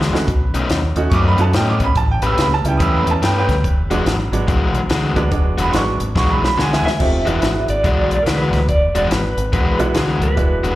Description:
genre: electric blues shuffle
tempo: 143 BPM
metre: 4/4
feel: swing 63% on 8ths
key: E mixolydian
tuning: A4 = 439 Hz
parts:
  - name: bright upright piano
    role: accompaniment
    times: 0.0-10.6 s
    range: F#3 to E6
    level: -21 LUFS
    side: right 4 dB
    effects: slapback echo
  - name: crunchy overdriven guitar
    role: riff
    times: 0.0-10.8 s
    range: B2 to B4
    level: -21 LUFS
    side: left 3 dB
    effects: spring reverb, slapback echo
  - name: deep dub fingered electric bass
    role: bass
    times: 0.0-10.8 s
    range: E1 to A2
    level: -19 LUFS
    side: equal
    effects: none
  - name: compact cocktail drum kit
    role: drums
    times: 0.0-10.7 s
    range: crash cymbal, hi-hat, kick drum, snare drum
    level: -20 LUFS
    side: equal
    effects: none
  - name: electric guitar through a small old amp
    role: melody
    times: 6.9-10.8 s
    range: G#4 to E5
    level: -21 LUFS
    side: right 1 dB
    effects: tremolo, slapback echo
room: small room ambience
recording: live gig heard through the venue's PA, club reverb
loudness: -14 LUFS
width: side -16 dB against mid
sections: 0.0-7.0 A section; 7.0-10.8 B section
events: drum fill 0.0, 6.2-7.0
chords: 0.3 B9; 2.0 A9; 3.6 E9

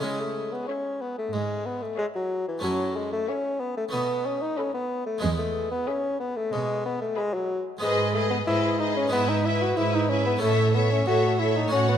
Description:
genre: classical, baroque-style concerto movement with solo episodes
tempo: 92 BPM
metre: 4/4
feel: straight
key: E major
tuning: A4 = 440 Hz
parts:
  - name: warm bassoon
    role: melody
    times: 0.0-12.0 s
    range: E3 to F#4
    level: -26 LUFS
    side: left 2 dB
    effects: none
  - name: harpsichord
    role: accompaniment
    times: 0.0-12.0 s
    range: E2 to F#4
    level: -33 LUFS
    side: right 1 dB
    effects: none
  - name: dark chamber cello section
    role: bass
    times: 0.0-12.0 s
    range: E2 to C#3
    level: -28 LUFS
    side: right 4 dB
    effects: none
  - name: rich studio violin section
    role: melody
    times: 0.7-12.0 s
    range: D#5 to F#5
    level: -34 LUFS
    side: left 5 dB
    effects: none
  - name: rich studio violin section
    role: second line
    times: 0.7-12.0 s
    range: B4 to C#5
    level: -32 LUFS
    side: left 4 dB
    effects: none
  - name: rich chamber viola section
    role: accompaniment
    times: 0.7-12.0 s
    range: E4 to A4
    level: -31 LUFS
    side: right 4 dB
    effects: none
room: moderate concert hall reverb, RT60 2.1 s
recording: none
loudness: -23 LUFS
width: side -9 dB against mid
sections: 0.0-12.0 A section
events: none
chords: 0.0 C#m; 2.6 F#m7; 3.9 B7; 5.2 E; 7.8 G#m; 9.1 E/G#; 10.4 A

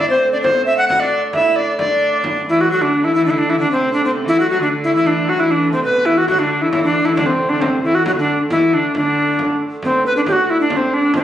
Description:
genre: medieval dance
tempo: 135 BPM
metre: 2/4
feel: straight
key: D mixolydian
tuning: A4 = 439 Hz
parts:
  - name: bright reedy tenor recorder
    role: melody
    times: 0.0-11.2 s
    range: C4 to F#5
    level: -14 LUFS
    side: equal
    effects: plate reverb
  - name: rich viola da gamba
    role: second line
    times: 0.0-9.6 s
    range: B2 to F#4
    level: -22 LUFS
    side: left 2 dB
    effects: none
  - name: dark hurdy-gurdy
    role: drone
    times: 0.0-11.2 s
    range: D3 to A3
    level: -28 LUFS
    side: right 4 dB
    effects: none
  - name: frame drum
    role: percussion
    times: 0.2-2.5, 6.3-11.2 s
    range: none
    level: -26 LUFS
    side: right 1 dB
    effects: none
room: wet studio reverb, RT60 0.8 s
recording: recorded on a phone in the room, studio reverb, compression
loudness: -14 LUFS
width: side -11 dB against mid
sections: 0.0-2.7 A section; 2.7-9.8 A section; 9.8-11.2 B section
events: speeding up 0.0-11.2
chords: none

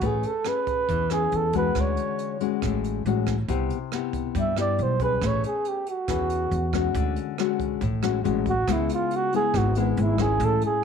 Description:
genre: bossa nova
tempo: 139 BPM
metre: 4/4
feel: straight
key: A major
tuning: A4 = 440 Hz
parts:
  - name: breathy flugelhorn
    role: melody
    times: 0.0-10.8 s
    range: B3 to E5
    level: -25 LUFS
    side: right 4 dB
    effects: slapback echo
  - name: nylon-string guitar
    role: accompaniment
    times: 0.0-10.8 s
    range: G#2 to B4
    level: -27 LUFS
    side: left 14 dB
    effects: none
  - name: upright bass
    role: bass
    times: 0.0-10.6 s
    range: G#1 to G2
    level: -26 LUFS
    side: right 1 dB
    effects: none
  - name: jazz brush drum kit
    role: drums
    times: 0.0-10.7 s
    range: hi-hat, kick drum, rim click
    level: -34 LUFS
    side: right 5 dB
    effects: none
room: light reverb, studio ambience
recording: 1960s-style stereo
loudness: -22 LUFS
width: side -6 dB against mid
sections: 0.0-10.8 A section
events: flugelhorn solo 0.0-10.8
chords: 0.0 Amaj9; 1.8 Dmaj7#11; 3.5 Cmaj7; 5.2 Amaj9; 6.9 Dmaj7#11; 8.7 C#m7

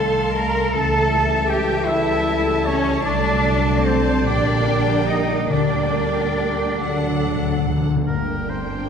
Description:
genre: classical, slow romantic movement for symphony orchestra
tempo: 46-53 BPM (dotted quarters)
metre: 6/8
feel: rubato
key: G minor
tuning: A4 = 438 Hz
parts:
  - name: rich chamber violin section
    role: melody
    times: 0.0-8.9 s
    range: F#5 to C6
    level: -30 LUFS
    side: left 2 dB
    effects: none
  - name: clear clarinet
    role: second line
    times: 0.0-7.6 s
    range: C5 to Bb5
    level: -31 LUFS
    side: left 2 dB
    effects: none
  - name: clear oboe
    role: second line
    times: 0.0-8.9 s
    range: Bb4 to Bb5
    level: -31 LUFS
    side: right 1 dB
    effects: none
  - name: rich chamber violin section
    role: second line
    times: 0.0-8.9 s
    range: D4 to F#5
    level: -32 LUFS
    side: left 1 dB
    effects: none
  - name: silver concert flute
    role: second line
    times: 0.0-7.6 s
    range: C5 to Bb5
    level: -30 LUFS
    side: equal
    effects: none
  - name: warm studio viola section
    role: accompaniment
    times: 0.0-8.9 s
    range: D4 to Bb4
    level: -30 LUFS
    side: right 4 dB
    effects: none
  - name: dark French horn section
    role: sustained chords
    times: 0.0-8.9 s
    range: A3 to A4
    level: -29 LUFS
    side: left 3 dB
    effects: none
  - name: dark trombone section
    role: sustained chords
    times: 0.0-7.7 s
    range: D3 to A3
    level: -28 LUFS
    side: right 2 dB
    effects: none
  - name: concert harp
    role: arpeggios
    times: 0.0-8.9 s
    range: G2 to A5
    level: -29 LUFS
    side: left 3 dB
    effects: none
  - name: bright trumpet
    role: stabs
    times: 0.0-7.7 s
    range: C5 to Bb5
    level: -30 LUFS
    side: right 2 dB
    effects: none
  - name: rich chamber cello section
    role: bass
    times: 0.0-8.9 s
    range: G2 to Bb4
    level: -23 LUFS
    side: equal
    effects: none
  - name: warm chamber double bass section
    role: bass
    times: 0.0-8.9 s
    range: G1 to D2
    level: -24 LUFS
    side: right 2 dB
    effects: none
  - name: timpani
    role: percussion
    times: 5.5-8.1 s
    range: D3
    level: -24 LUFS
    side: left 4 dB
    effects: none
room: wet scoring stage reverb, RT60 1.7 s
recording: heard from further back in the room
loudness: -17 LUFS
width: side -7 dB against mid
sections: 0.0-8.1 A section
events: timpani fill 6.8-8.1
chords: 0.0 Adim/C; 0.7 A7/C#; 3.1 D7/C; 4.3 Gm/Bb; 5.5 Gm/D; 6.8 D; 8.1 Gm

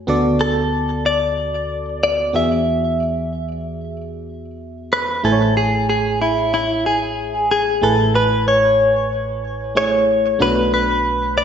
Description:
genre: pop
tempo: 93 BPM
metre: 4/4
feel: straight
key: A major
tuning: A4 = 439 Hz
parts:
  - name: FM electric piano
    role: accompaniment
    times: 0.0-11.4 s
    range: A1 to G#5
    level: -20 LUFS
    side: right 1 dB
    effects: chorus
  - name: direct-recorded clean electric guitar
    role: melody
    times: 0.4-11.4 s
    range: E4 to E5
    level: -17 LUFS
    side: left 1 dB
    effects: wide subtle chorus, digital delay
room: wet recital hall reverb, RT60 1.3 s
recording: nothing above 7.9 kHz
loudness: -15 LUFS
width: side -8 dB against mid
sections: 0.0-5.2 A section; 5.2-11.4 B section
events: none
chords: 0.1 D6; 2.3 Eadd9; 5.2 Amaj7; 10.4 Bm7

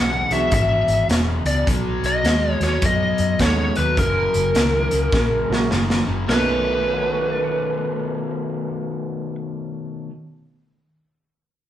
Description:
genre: electric blues shuffle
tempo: 104 BPM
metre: 4/4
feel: swing 63% on 8ths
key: B mixolydian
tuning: A4 = 440 Hz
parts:
  - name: biting lead guitar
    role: melody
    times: 0.0-9.4 s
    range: A#4 to F#5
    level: -22 LUFS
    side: left 1 dB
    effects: overdrive
  - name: overdriven semi-hollow guitar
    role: riff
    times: 0.0-10.1 s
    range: E2 to C#4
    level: -25 LUFS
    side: left 2 dB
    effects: none
  - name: vintage muted fingered electric bass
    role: bass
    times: 0.0-10.1 s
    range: E1 to F#2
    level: -24 LUFS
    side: equal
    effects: none
  - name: warm upright piano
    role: accompaniment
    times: 0.3-10.3 s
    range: B2 to C#7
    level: -30 LUFS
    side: right 5 dB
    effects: none
  - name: raw garage drum kit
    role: drums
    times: 0.3-6.5 s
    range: hi-hat, kick drum, snare drum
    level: -22 LUFS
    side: equal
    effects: none
room: wet large studio reverb, RT60 1.2 s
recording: band playing live in one room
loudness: -18 LUFS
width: side -11 dB against mid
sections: 0.0-6.3 A section; 6.3-8.6 B section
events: drum fill 5.1-6.3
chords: 0.0 E; 1.7 B7; 4.0 F#; 6.3 B9

